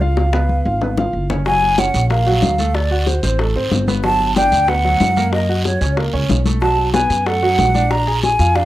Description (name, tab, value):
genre	Afro-Cuban jazz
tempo	186 BPM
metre	4/4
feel	straight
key	unclear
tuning	A4 = 440 Hz
part	breathy hollow jazz flute	melody	0.0-8.7 s	C5 to A#5	-18 LUFS	equal	none
part	warm concert grand piano	accompaniment	0.0-8.7 s	F#3 to G#5	-22 LUFS	right 2 dB	none
part	upright bass	bass	0.0-8.7 s	Gb1 to F#2	-18 LUFS	equal	none
part	congas	percussion	0.0-8.7 s	none	-23 LUFS	left 4 dB	none
part	bongos	percussion	0.2-8.7 s	none	-25 LUFS	left 5 dB	none
part	guiro	percussion	1.5-8.7 s	none	-28 LUFS	right 2 dB	none
room	light reverb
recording	rough home demo mix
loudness	-14 LUFS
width	side -15 dB against mid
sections	0.0-1.5 A section; 1.5-8.7 B section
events	drum fill 0.2-1.5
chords	0.2 Db7; 1.5 F#maj7; 2.7 D7; 4.0 Gmaj7; 5.3 F#; 6.6 Bm7; 7.9 A#7